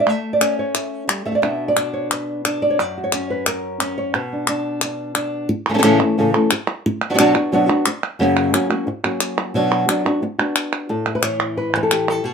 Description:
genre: flamenco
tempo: 178 BPM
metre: 4/4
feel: straight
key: B minor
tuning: A4 = 440 Hz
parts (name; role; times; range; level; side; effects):
- flamenco guitar; melody; 0.0-12.3 s; F#2 to E5; -18 LUFS; equal; none
- palmas hand claps; percussion; 0.1-12.2 s; none; -21 LUFS; right 1 dB; none
room: moderate small room reverb, RT60 0.6 s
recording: close, detailed microphones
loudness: -17 LUFS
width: side -6 dB against mid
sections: 0.0-5.5 A section; 5.5-10.9 B section; 10.9-12.3 C section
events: none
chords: 0.1 A; 1.4 Bm; 2.8 F#; 4.1 Bm; 5.5 A; 6.8 Bm; 8.2 F#; 9.5 Bm; 10.9 A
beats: | 0.07 0.41 0.74 1.08 | 1.42 1.76 2.10 2.44 | 2.78 3.12 3.46 3.80 | 4.14 4.48 4.82 5.15 | 5.49 5.83 6.17 6.51 | 6.84 7.18 7.52 7.86 | 8.20 8.53 8.87 9.21 | 9.55 9.88 10.22 10.56 | 10.89 11.23 11.57 11.91 | 12.24

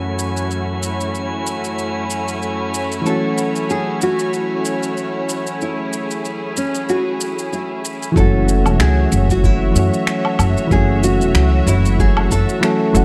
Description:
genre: sunset chillout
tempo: 94 BPM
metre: 4/4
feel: swing 56% on 16ths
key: unclear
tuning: A4 = 438 Hz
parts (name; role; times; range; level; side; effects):
- soft electric-piano-like synth keys; accompaniment; 0.0-13.0 s; F#2 to A4; -23 LUFS; equal; chorus
- rich studio string section; sustained chords; 0.0-13.0 s; F#2 to E5; -26 LUFS; equal; low-pass filter
- drifting glass-harmonics texture; texture; 0.0-8.2 s; G#5; -34 LUFS; equal; chorus, built-in reverb
- electronic shaker, woodblock and finger snaps; drums; 0.2-13.0 s; none; -27 LUFS; equal; studio reverb
- nylon-string guitar; melody; 3.1-12.9 s; C#4 to A4; -25 LUFS; equal; delay
- upright bass; bass; 8.2-13.0 s; E1 to F#2; -18 LUFS; equal; none
- electronic kick drum; drums; 8.2-12.4 s; none; -20 LUFS; equal; studio reverb
room: light reverb, small room ambience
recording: dark, warm production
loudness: -18 LUFS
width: mono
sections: 0.0-8.2 A section; 8.2-13.0 B section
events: filter sweep on string section 0.0-8.2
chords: 0.0 A6/F#; 3.1 F#m7; 8.2 A6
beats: | 0.50 1.14 1.78 2.42 | 3.05 3.69 4.33 4.97 | 5.61 6.25 6.88 7.52 | 8.16 8.80 9.44 10.07 | 10.71 11.35 11.99 12.63

